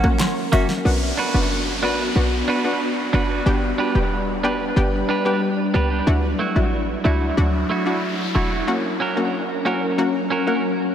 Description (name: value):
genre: dancehall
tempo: 92 BPM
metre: 4/4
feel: straight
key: B minor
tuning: A4 = 436 Hz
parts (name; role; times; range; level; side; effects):
- analog pluck; accompaniment; 0.0-10.9 s; A#3 to G4; -25 LUFS; left 2 dB; chorus
- glassy FM pad; sustained chords; 0.0-10.9 s; F#3 to B4; -24 LUFS; left 1 dB; ensemble chorus, built-in reverb, tremolo, sidechain pumping
- clean electric guitar; arpeggios; 0.0-10.6 s; A3 to B4; -25 LUFS; right 4 dB; analog delay
- short 808-style bass; bass; 0.0-8.6 s; E1 to D2; -21 LUFS; equal; none
- pop drum kit; drums; 0.0-0.8 s; handclaps, hi-hat, kick drum, rim click, snare drum; -24 LUFS; equal; none
- woodblock and cabasa; percussion; 0.2-0.7 s; none; -36 LUFS; left 2 dB; none
- soft struck synth lead; melody; 0.5-0.7 s; E5; -31 LUFS; left 3 dB; chorus, analog delay
- downlifter and noise sweep; sound effects; 0.9-10.0 s; none; -30 LUFS; equal; none
room: wet huge ambient reverb, RT60 5.6 s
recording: dreamy mix soaked in reverb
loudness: -18 LUFS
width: side -9 dB against mid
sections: 0.9-10.9 A section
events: noise sweep 6.9-10.9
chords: 0.0 F#; 0.9 Bm; 3.5 G; 6.1 Dadd9; 8.7 F#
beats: 0.20 | 0.85 1.50 2.16 2.81 | 3.46 4.11 4.77 5.42 | 6.07 6.72 7.38 8.03 | 8.68 9.33 9.98 10.64